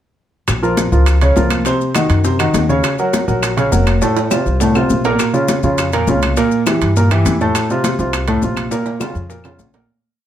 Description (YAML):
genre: latin, salsa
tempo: 204 BPM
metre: 4/4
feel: straight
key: Bb minor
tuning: A4 = 440 Hz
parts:
  - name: upright bass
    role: bass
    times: 0.5-9.8 s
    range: F1 to G2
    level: -17 LUFS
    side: equal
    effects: none
  - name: bongos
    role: percussion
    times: 0.5-9.9 s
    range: none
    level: -26 LUFS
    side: left 6 dB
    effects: none
  - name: claves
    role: percussion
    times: 0.5-9.6 s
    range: none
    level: -28 LUFS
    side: left 5 dB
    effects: none
  - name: congas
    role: percussion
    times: 0.5-9.9 s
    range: none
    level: -24 LUFS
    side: left 2 dB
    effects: none
  - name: maracas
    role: percussion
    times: 0.5-9.9 s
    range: none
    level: -30 LUFS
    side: left 7 dB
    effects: none
  - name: timbales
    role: percussion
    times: 0.5-9.8 s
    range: none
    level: -23 LUFS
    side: right 6 dB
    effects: none
  - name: clear concert grand piano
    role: accompaniment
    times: 0.6-9.9 s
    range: A2 to Db5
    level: -16 LUFS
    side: right 1 dB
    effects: none
room: light reverb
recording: none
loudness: -13 LUFS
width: side -11 dB against mid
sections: 0.5-9.9 A section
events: drum fill 4.0-5.2, 8.7-9.9; fade-out 8.0-9.9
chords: 0.5 Bbm; 1.7 Cdim; 2.8 Gbmaj7; 4.0 F; 5.2 Bbm; 6.4 Gm13; 7.5 F; 8.7 Bbm